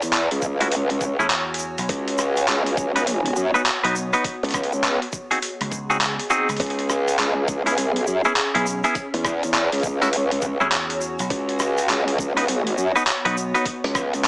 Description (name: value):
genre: glitch hop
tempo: 102 BPM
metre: 4/4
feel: swing 63% on 16ths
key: unclear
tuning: A4 = 440 Hz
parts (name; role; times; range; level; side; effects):
- growl bass; bass; 0.0-14.3 s; C#2 to F#2; -22 LUFS; equal; chorus
- boom bap sampler-style drum kit; drums; 0.0-14.3 s; handclaps, hi-hat, rim click; -24 LUFS; equal; none
- egg shaker; percussion; 0.0-14.3 s; none; -34 LUFS; equal; none
- granular cloud pad; texture; 0.0-14.3 s; B3 to G#5; -29 LUFS; equal; built-in reverb, sidechain pumping
- electronic kick drum; drums; 0.4-14.1 s; none; -31 LUFS; equal; none
- semi-hollow electric guitar; stabs; 0.6-13.6 s; A3 to B4; -22 LUFS; equal; vintage 12-bit sampler grit, sidechain pumping, digital delay
- vintage slap bass; bass; 1.2-13.5 s; B1 to E2; -28 LUFS; equal; none
room: light reverb, digital ambience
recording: vinyl crackle, small speaker sound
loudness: -19 LUFS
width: side -28 dB against mid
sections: 0.0-14.3 A section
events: none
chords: 0.0 F#7(no3)/C#; 1.9 B/C#; 4.2 G#7(no3)/C#; 6.6 C#m7; 9.0 F#7(no3); 11.3 B/C#; 13.7 G#7(no3)